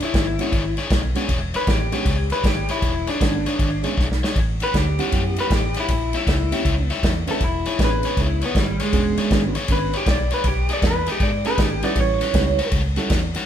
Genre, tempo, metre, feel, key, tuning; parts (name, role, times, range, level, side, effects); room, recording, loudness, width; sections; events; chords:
electric blues shuffle; 158 BPM; 4/4; swing 64% on 8ths; E mixolydian; A4 = 440 Hz
electric guitar through a small old amp; melody; 0.0-12.7 s; G3 to D5; -24 LUFS; equal; spring reverb
biting overdriven guitar; riff; 0.0-13.5 s; A2 to C#5; -27 LUFS; left 4 dB
natural country drum kit; drums; 0.0-13.4 s; kick drum, ride cymbal, snare drum; -22 LUFS; equal
vintage muted fingered electric bass; bass; 0.1-13.3 s; E1 to G#2; -24 LUFS; equal
barky reed electric piano; accompaniment; 0.4-13.1 s; G3 to F#5; -28 LUFS; right 4 dB; fast tremolo
moderate studio reverb, RT60 0.8 s; band playing live in one room; -18 LUFS; side -10 dB against mid
0.0-13.5 A section
clean electric guitar solo 0.0-13.5; drum fill 4.0-4.4
0.0 E13; 4.4 A13; 5.9 A#dim7; 7.4 E13; 10.5 B13; 12.0 A13